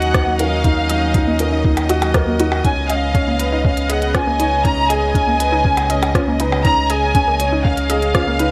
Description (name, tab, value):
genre	piano and strings electronica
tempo	120 BPM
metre	4/4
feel	straight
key	unclear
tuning	A4 = 444 Hz
part	dark studio violin section	melody	0.0-8.5 s	F5 to Bb5	-22 LUFS	equal	digital delay
part	warm studio string section	sustained chords	0.0-8.5 s	Db3 to Eb5	-28 LUFS	equal	sidechain pumping
part	felt-muted upright piano	riff	0.0-8.5 s	Db4 to Db5	-24 LUFS	equal	digital delay
part	warm sub bass	bass	0.0-8.5 s	Db2 to Eb2	-24 LUFS	equal	sidechain pumping
part	minimal click drum kit	drums	0.0-8.5 s	hi-hat, percussion blips, rim click	-26 LUFS	equal	none
part	warbly dusty pluck	arpeggios	0.1-8.4 s	Bb3 to Eb5	-28 LUFS	equal	chorus, sidechain pumping, digital delay
part	electronic kick drum	drums	0.1-8.2 s	none	-20 LUFS	equal	none
room	light reverb, digital ambience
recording	none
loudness	-17 LUFS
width	mono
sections	0.0-8.5 A section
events	none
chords	0.0 Ebmadd9; 2.6 Db7